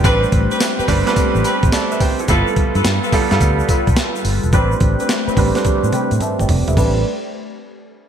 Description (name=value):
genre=R&B, new jack swing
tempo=107 BPM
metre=4/4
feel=swing 66% on 16ths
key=A minor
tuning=A4 = 435 Hz
part: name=bright baby grand piano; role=accompaniment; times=0.0-7.0 s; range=G3 to B5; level=-20 LUFS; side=right 4 dB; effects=low-pass filter
part: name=phased analog pad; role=sustained chords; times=0.0-7.0 s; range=G3 to D5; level=-23 LUFS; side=left 1 dB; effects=phaser, chorus, low-pass filter
part: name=warm horn section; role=stabs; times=0.0-7.0 s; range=C4 to B4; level=-24 LUFS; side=left 2 dB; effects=low-pass filter, ping-pong delay
part: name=vintage muted fingered electric bass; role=bass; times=0.0-7.0 s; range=E1 to A2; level=-18 LUFS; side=equal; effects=none
part: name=breakbeat sampler-style drum kit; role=drums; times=0.0-6.9 s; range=crash cymbal, hi-hat, kick drum, snare drum, tambourine, toms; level=-18 LUFS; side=equal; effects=gated reverb
part: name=egg shaker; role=percussion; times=0.0-7.0 s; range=none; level=-35 LUFS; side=left 11 dB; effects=none
room=light reverb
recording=bright 1980s-style digital production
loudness=-14 LUFS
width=side -8 dB against mid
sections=0.0-6.8 A section; 6.8-8.1 B section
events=filter sweep 0.0-6.8; grand piano fill 1.2-2.3, 5.6-6.8; drum fill 5.6-6.8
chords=0.0 Am11; 2.3 G9; 4.5 Am11